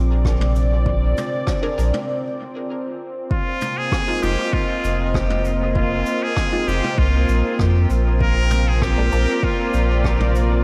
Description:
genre	ambient dub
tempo	98 BPM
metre	4/4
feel	straight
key	F dorian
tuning	A4 = 441 Hz
part	warm analog pad	sustained chords	0.0-10.6 s	C4 to Eb5	-27 LUFS	equal	subtle chorus
part	soft dub sub bass	bass	0.0-10.6 s	F1 to F2	-20 LUFS	equal	none
part	wind-like tuned noise texture	texture	0.0-10.6 s	D3 to D6	-33 LUFS	equal	built-in reverb, subtle chorus
part	electronic kick drum	drums	0.2-10.2 s	none	-26 LUFS	equal	overdrive
part	jazz brush drum kit	drums	0.3-10.5 s	cabasa, rim click, toms	-34 LUFS	equal	dub echo
part	filtered dub chord stab	stabs	1.6-9.3 s	Ab3 to Bb4	-34 LUFS	equal	phaser, vintage 12-bit sampler grit, dub echo
part	trumpet with straight mute	melody	3.3-10.4 s	F4 to Bb4	-27 LUFS	equal	dub echo
room	moderate lush hall reverb, RT60 2.0 s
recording	dreamy mix soaked in reverb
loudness	-20 LUFS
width	mono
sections	0.0-3.3 A section; 3.3-10.6 B section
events	break 2.1-3.3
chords	0.0 Bb7; 3.3 Fm7; 8.2 Bb7

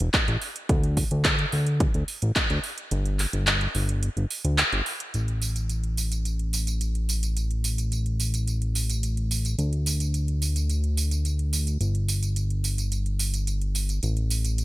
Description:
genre	nu-disco, nu disco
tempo	108 BPM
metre	4/4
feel	straight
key	unclear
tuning	A4 = 440 Hz
part	fat analog bass	bass	0.0-14.6 s	E1 to D2	-24 LUFS	equal	none
part	house drum kit	drums	0.0-14.6 s	handclaps, hi-hat, tambourine	-28 LUFS	right 1 dB	studio reverb, gated reverb
part	electronic kick drum	drums	0.1-2.5 s	none	-25 LUFS	equal	studio reverb
room	little or no reverb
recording	bright 1980s-style digital production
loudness	-23 LUFS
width	side -17 dB against mid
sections	0.0-5.1 A section; 5.1-14.6 B section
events	kick drops out 2.9-5.1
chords	none

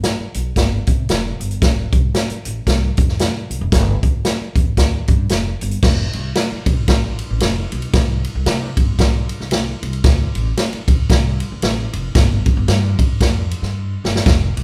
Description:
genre	uptempo 1960s-style soul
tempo	114 BPM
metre	4/4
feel	swing 59% on 8ths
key	unclear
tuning	A4 = 440 Hz
part	swinging big-band drum kit	drums	0.0-14.6 s	crash cymbal, hi-hat, kick drum, ride cymbal, snare drum	-18 LUFS	equal	none
part	upright bass	bass	0.2-14.6 s	F1 to C3	-23 LUFS	equal	none
room	moderate large studio reverb, RT60 1.1 s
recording	band playing live in one room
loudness	-18 LUFS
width	mono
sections	0.0-5.8 A section; 5.8-14.6 B section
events	drum fill 13.7-14.3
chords	none

